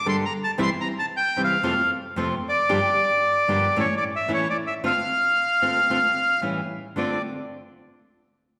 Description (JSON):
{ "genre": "tango", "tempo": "113 BPM", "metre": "4/4", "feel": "rubato", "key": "D minor", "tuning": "A4 = 441 Hz", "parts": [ { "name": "bandoneon", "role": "melody", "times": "0.0-7.2 s", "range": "C#5 to C6", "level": "-24 LUFS", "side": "equal", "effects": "none" }, { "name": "nylon-string guitar", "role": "accompaniment", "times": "0.1-7.2 s", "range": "F2 to A4", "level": "-29 LUFS", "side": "equal", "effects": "none" } ], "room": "wet recital hall reverb, RT60 1.6 s", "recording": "recorded in a church or concert hall", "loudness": "-23 LUFS", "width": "mono", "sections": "0.0-7.0 A section; 7.0-8.6 B section", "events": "none", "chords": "0.0 Gmadd9; 0.6 C; 1.7 F; 2.7 Gm7; 3.8 A; 4.8 Dm7; 6.4 A7; 7.0 Dm7" }